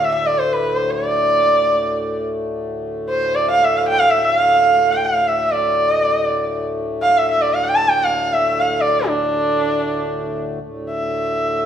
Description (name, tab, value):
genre	indian classical, Hindustani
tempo	free time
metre	none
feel	none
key	D raga bhimpalasi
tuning	A4 = 441 Hz
part	warm sarangi	melody	0.0-11.7 s	D4 to A5	-16 LUFS	right 1 dB	none
part	pedal harmonium	drone	0.0-11.7 s	D2 to A2	-24 LUFS	left 1 dB	none
room	moderate recital hall reverb, RT60 1.6 s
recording	recorded in a church or concert hall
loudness	-15 LUFS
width	side -9 dB against mid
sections	0.0-10.6 A section; 10.6-11.7 A section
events	none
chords	none